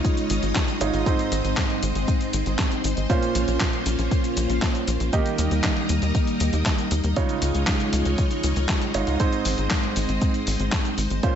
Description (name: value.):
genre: italo disco.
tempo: 118 BPM.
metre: 4/4.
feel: straight.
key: Ab major.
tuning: A4 = 440 Hz.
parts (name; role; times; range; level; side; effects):
string machine, full ensemble; sustained chords; 0.0-11.4 s; G3 to Eb5; -26 LUFS; equal; ensemble chorus.
warm concert grand piano; stabs; 0.0-11.4 s; Ab2 to Eb5; -28 LUFS; right 6 dB; low-pass filter, ping-pong delay.
clean 12-bit digital drum machine; drums; 0.0-11.3 s; cabasa, handclaps, hi-hat, snare drum; -28 LUFS; left 1 dB; gated reverb.
electronic kick drum; drums; 0.0-11.3 s; none; -24 LUFS; left 1 dB; overdrive.
tight sequencer bass; bass; 0.3-11.2 s; Ab1 to Eb2; -25 LUFS; left 1 dB; none.
room: little or no reverb.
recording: nothing above 7.9 kHz.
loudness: -20 LUFS.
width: side -8 dB against mid.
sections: 0.0-11.4 A section.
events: none.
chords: 0.0 Dbadd9; 1.1 Ab; 3.1 Bbmadd9; 5.1 Eb; 7.2 Dbadd9; 9.2 Ab.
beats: 0.05 0.55 | 1.06 1.57 2.08 2.59 | 3.10 3.60 4.11 4.62 | 5.13 5.64 6.15 6.66 | 7.16 7.67 8.18 8.69 | 9.20 9.71 10.21 10.72 | 11.23.